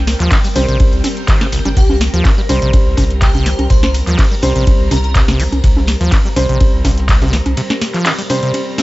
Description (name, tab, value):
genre	acid house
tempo	124 BPM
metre	4/4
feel	swing 53% on 16ths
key	unclear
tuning	A4 = 440 Hz
part	string machine, full ensemble	sustained chords	0.0-8.8 s	G3 to Bb5	-26 LUFS	equal	phaser, ensemble chorus, sidechain pumping
part	dark concert grand piano	stabs	0.0-8.8 s	G3 to C5	-22 LUFS	equal	tape echo
part	round analog bass	bass	0.0-7.5 s	G1 to Eb2	-16 LUFS	equal	sidechain pumping
part	booming analog drum machine	drums	0.1-8.8 s	congas, handclaps, hi-hat, ride cymbal, snare drum	-19 LUFS	equal	none
part	crunchy breakbeat drum kit	drums	0.1-8.8 s	hi-hat, ride cymbal, snare drum	-31 LUFS	equal	none
part	acid bass, saw	riff	0.2-8.8 s	C2 to C4	-20 LUFS	equal	sidechain pumping
part	electronic kick drum	drums	0.3-7.2 s	none	-13 LUFS	equal	none
part	airy dreamy lead	melody	1.8-5.1 s	G4 to C5	-25 LUFS	left 1 dB	chorus, tape echo
room	studio ambience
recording	nothing above 7.8 kHz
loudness	-11 LUFS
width	side -19 dB against mid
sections	0.0-8.8 A section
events	break 7.6-8.8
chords	0.0 C5